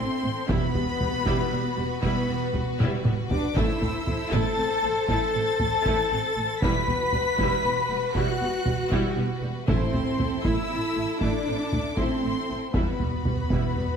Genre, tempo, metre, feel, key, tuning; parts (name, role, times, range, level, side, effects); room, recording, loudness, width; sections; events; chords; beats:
cinematic, epic orchestral film score; 78 BPM (dotted quarters); 12/8; straight; A dorian; A4 = 441 Hz
warm symphonic violin section; melody; 0.0-14.0 s; B5 to B6; -33 LUFS; left 2 dB
clear symphonic violin section; second line; 0.0-14.0 s; E4 to C5; -35 LUFS; left 3 dB
large flute ensemble; second line; 0.0-14.0 s; B4 to B5; -32 LUFS; left 4 dB
warm symphonic viola section; accompaniment; 0.0-13.9 s; G3 to E4; -32 LUFS; right 1 dB
warm French horn section; sustained chords; 0.0-14.0 s; B3 to B4; -32 LUFS; left 5 dB
warm symphonic cello section; bass; 0.0-14.0 s; B3 to B4; -32 LUFS; right 2 dB
warm symphonic double bass section; bass; 0.0-13.9 s; E1 to A1; -31 LUFS; right 4 dB
solo taiko drums; drums; 0.5-14.0 s; -28 LUFS; equal
timpani; percussion; 0.5-1.2, 9.7-13.9 s; E2 to A2; -33 LUFS; right 1 dB
moderate scoring stage reverb, RT60 1.5 s; -23 LUFS; side -7 dB against mid
0.0-14.0 A section
drum fill 2.8-3.6; timpani fill 12.8-14.0
0.5 Emadd9; 3.6 Am; 6.6 Emadd9; 9.7 Am; 12.8 Emadd9
| 0.50 1.26 2.03 2.79 | 3.56 4.33 5.09 5.86 | 6.63 7.39 8.16 8.92 | 9.69 10.46 11.22 11.99 | 12.75 13.52